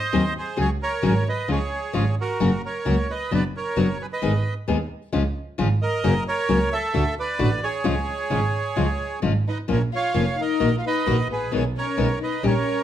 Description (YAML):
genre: tango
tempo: 132 BPM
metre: 4/4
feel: rubato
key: unclear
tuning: A4 = 443 Hz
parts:
  - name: bandoneon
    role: melody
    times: 0.0-12.8 s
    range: F#4 to E#5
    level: -25 LUFS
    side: right 3 dB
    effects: none
  - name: nylon-string guitar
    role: accompaniment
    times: 0.1-12.5 s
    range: B2 to G#4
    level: -24 LUFS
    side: left 4 dB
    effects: none
  - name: clear double bass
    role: bass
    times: 0.1-12.6 s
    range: E#1 to D#2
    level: -25 LUFS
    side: right 2 dB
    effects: none
  - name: warm studio violin section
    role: second line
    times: 9.5-12.8 s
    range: B3 to E#4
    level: -28 LUFS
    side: left 5 dB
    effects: none
room: light reverb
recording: none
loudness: -20 LUFS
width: side -11 dB against mid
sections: 0.0-12.8 A section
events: none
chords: 0.0 G#7; 0.6 C#sus4; 1.5 C#; 2.4 F#; 3.3 Bm/F#; 4.2 G#m; 5.1 C#; 6.0 F#; 6.9 D; 7.8 C#; 9.7 A#m; 10.6 D#m/A#; 11.5 G#m/B